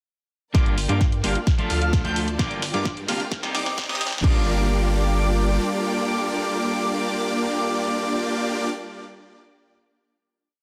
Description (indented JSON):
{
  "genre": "EDM, festival progressive house",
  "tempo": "130 BPM",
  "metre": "4/4",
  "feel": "straight",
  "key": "G minor",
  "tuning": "A4 = 441 Hz",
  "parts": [
    { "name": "electric guitar at the edge of break-up", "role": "accompaniment", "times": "0.5-8.9 s", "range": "G2 to G4", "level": "-32 LUFS", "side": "equal", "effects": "sidechain pumping, digital delay" },
    { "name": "rich symphonic string section", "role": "sustained chords", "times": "0.5-8.7 s", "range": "G3 to A5", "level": "-37 LUFS", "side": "equal", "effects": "none" },
    { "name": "unison lead", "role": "arpeggios", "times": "0.5-8.7 s", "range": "D6 to G6", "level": "-33 LUFS", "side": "equal", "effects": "lush chorus, sidechain pumping, digital delay" },
    { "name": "big supersaw lead", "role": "riff", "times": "0.5-8.7 s", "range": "Bb3 to G5", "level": "-29 LUFS", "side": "equal", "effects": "sidechain pumping, low-pass filter, digital delay" },
    { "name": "saturated sub bass", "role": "bass", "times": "0.5-5.6 s", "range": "G1 to G2", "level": "-27 LUFS", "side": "equal", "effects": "sidechain pumping" },
    { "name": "electronic kick drum", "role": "drums", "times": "0.5-4.3 s", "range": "none", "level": "-22 LUFS", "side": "equal", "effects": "none" },
    { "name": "house drum kit", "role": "drums", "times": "0.5-4.3 s", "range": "crash cymbal, hi-hat, snare drum", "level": "-32 LUFS", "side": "equal", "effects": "high-pass filter on snare, high-pass filter on hats, high-pass filter on cymbals" },
    { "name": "riser", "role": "sound effects", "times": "2.6-4.2 s", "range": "none", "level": "-41 LUFS", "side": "equal", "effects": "none" }
  ],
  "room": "light reverb",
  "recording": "dense, heavily limited modern master, high-pass filter",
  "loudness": "-23 LUFS",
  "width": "mono",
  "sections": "0.5-4.2 build; 4.2-7.9 final chord",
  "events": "build-up 0.5-4.2; drum fill 0.5-4.2; filter sweep on supersaw synth 0.5-4.2; filter sweep 0.5-4.2",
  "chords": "0.5 Gm7; 1.5 Dm; 2.4 Gm7; 3.3 Cm; 4.2 Gm7"
}